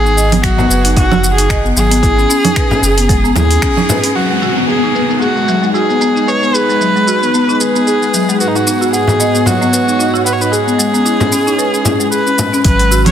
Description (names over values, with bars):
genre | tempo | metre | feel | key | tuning
organic downtempo | 113 BPM | 4/4 | swing 56% on 16ths | G# minor pentatonic | A4 = 441 Hz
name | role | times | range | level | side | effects
clear kamancheh | melody | 0.0-13.1 s | D#4 to C#5 | -15 LUFS | equal | digital delay
folk marimba with medium mallets | arpeggios | 0.0-13.1 s | F#3 to F#5 | -15 LUFS | left 1 dB | low-pass filter, digital delay
warm sub bass | bass | 0.0-3.6, 12.6-13.1 s | F#1 to D#2 | -14 LUFS | equal | sidechain pumping
deep house drum kit | drums | 0.1-13.1 s | congas, finger snaps, hi-hat, shaker | -18 LUFS | right 2 dB | low-pass filter on hats, low-pass filter on perc, soft clipping on snare, low-pass filter on snare
electronic kick drum | drums | 0.4-3.7, 12.6-12.8 s | none | -15 LUFS | equal | none
frame drum | percussion | 0.6-4.0, 9.1-12.5 s | none | -19 LUFS | left 2 dB | none
warm analog pad | sustained chords | 4.1-12.6 s | G#2 to D#5 | -19 LUFS | equal | chorus, sidechain pumping
downlifter | sound effects | 4.2-8.4 s | none | -21 LUFS | left 1 dB | none
room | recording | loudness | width
light reverb, digital ambience | dense, heavily limited modern master | -10 LUFS | side -9 dB against mid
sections
0.0-4.2 A section; 4.2-12.6 B section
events
band accent 3.6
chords
0.0 B; 2.0 C#7sus2; 4.2 G#m7; 8.4 B/G#; 10.5 C#7sus2/G#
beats
0.44 0.97 1.50 | 2.03 2.56 3.09 3.62 | 4.15 4.68 5.21 5.75 | 6.28 6.81 7.34 7.87 | 8.40 8.93 9.46 9.99 | 10.53 11.06 11.59 12.12 | 12.65